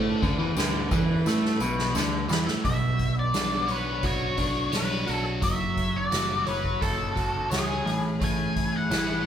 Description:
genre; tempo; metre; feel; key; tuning
psychedelic rock; 86 BPM; 4/4; straight; B dorian; A4 = 437 Hz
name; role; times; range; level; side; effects
clear symphonic string section; sustained chords; 0.0-9.3 s; C#3 to B4; -40 LUFS; equal; none
overdriven electric guitar; riff; 0.0-9.3 s; B2 to C#5; -28 LUFS; right 1 dB; phaser
overdriven picked electric bass; bass; 0.0-9.3 s; F#1 to A2; -30 LUFS; equal; none
soft-mallet drum kit; drums; 0.2-9.1 s; hi-hat, kick drum, ride cymbal, snare drum; -29 LUFS; equal; none
tambourine; percussion; 0.2-9.1 s; none; -42 LUFS; left 6 dB; none
octave-fuzz lead guitar; melody; 2.6-9.3 s; G#4 to G#5; -29 LUFS; left 1 dB; wah, distortion
room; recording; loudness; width
moderate studio reverb, RT60 0.8 s; band playing live in one room; -23 LUFS; side -9 dB against mid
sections
0.0-2.7 A section; 2.7-9.3 B section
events
drum fill 1.3-2.7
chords
0.0 D5; 2.7 Bmadd9; 5.4 F#m; 7.9 Amaj7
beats
0.57 1.26 1.96 | 2.65 3.35 4.04 4.73 | 5.43 6.12 6.82 7.52 | 8.21 8.91

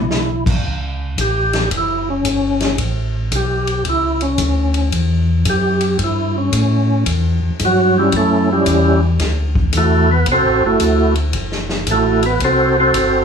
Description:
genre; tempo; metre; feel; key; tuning
soul jazz organ trio; 112 BPM; 4/4; swing 67% on 8ths; A mixolydian; A4 = 441 Hz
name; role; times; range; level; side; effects
percussive tonewheel organ; melody; 0.0-13.2 s; F#3 to C5; -16 LUFS; right 1 dB; slow rotary speaker, overdrive, chorus vibrato, plate reverb
mellow tonewheel organ; bass; 0.0-13.2 s; F#1 to A2; -18 LUFS; equal; overdrive, chorus vibrato, slow rotary speaker
swinging big-band drum kit; drums; 0.1-13.1 s; crash cymbal, hi-hat, kick drum, ride cymbal, snare drum; -22 LUFS; left 2 dB; none
room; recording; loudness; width
light reverb; studio reverb; -14 LUFS; side -6 dB against mid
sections
0.6-13.2 A section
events
tonewheel organ solo 0.6-13.2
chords
0.0 E5; 0.6 A9; 9.2 D9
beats
0.10 | 0.64 1.18 1.71 2.25 | 2.78 3.32 3.85 4.39 | 4.92 5.46 6.00 6.53 | 7.07 7.60 8.13 8.67 | 9.20 9.74 10.27 10.80 | 11.34 11.87 12.40 12.94

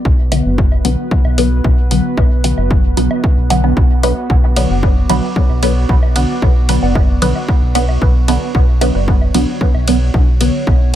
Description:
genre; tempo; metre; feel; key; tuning
dub techno; 113 BPM; 4/4; straight; B minor; A4 = 440 Hz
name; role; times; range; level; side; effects
warbly tape-like pad; sustained chords; 0.0-11.0 s; B3 to D5; -23 LUFS; right 2 dB; chorus, built-in reverb, sidechain pumping
filtered dub chord stab; stabs; 0.0-10.9 s; D3 to B3; -18 LUFS; equal; phaser, sidechain pumping, dub echo
round analog bass; bass; 0.1-11.0 s; F#1 to B1; -16 LUFS; equal; sidechain pumping
electronic kick drum; drums; 0.1-10.8 s; none; -13 LUFS; equal; none
punchy analog drum machine; drums; 0.3-10.5 s; hi-hat, ride cymbal; -25 LUFS; equal; none
woodblock and congas; percussion; 0.3-10.8 s; none; -27 LUFS; left 2 dB; sidechain pumping on perc, dub echo
filtered dub chord stab; riff; 4.7-9.1 s; B4 to F#5; -28 LUFS; right 2 dB; phaser, wide subtle chorus, sidechain pumping, dub echo
room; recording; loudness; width
digital ambience; none; -11 LUFS; side -12 dB against mid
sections
0.0-11.0 A section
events
none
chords
0.0 Bm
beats
| 0.05 0.58 1.11 1.65 | 2.18 2.71 3.24 3.77 | 4.30 4.83 5.36 5.89 | 6.42 6.96 7.49 8.02 | 8.55 9.08 9.61 10.14 | 10.67

